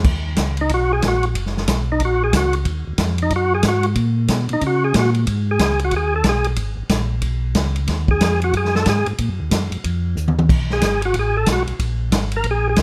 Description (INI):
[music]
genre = soul jazz organ trio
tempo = 184 BPM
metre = 4/4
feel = swing 62% on 8ths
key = Eb minor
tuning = A4 = 436 Hz
[part]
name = mellow tonewheel organ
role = bass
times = 0.0-12.8 s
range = Gb1 to Db3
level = -23 LUFS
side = equal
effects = slow rotary speaker
[part]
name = vintage drum kit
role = drums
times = 0.0-12.8 s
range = crash cymbal, hi-hat, kick drum, ride cymbal, snare drum, toms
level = -22 LUFS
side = equal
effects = none
[part]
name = percussive tonewheel organ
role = melody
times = 0.6-12.8 s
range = Eb4 to Bb4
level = -22 LUFS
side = equal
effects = overdrive, fast rotary speaker
[sound]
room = light reverb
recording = none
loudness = -19 LUFS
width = mono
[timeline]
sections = 0.1-12.8 A section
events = tonewheel organ solo 0.1-12.8; drum fill 10.2-10.5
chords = 0.1 Ebm7; 5.3 Abm; 7.9 Ebm; 10.5 Abm7; 11.8 Bb7(no3)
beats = | 0.05 0.38 0.70 1.03 | 1.36 1.68 2.01 2.34 | 2.66 2.99 3.32 3.64 | 3.97 4.29 4.62 4.95 | 5.27 5.60 5.93 6.25 | 6.58 6.91 7.23 7.56 | 7.88 8.21 8.54 8.86 | 9.19 9.52 9.84 10.17 | 10.49 10.82 11.15 11.47 | 11.80 12.12 12.45 12.78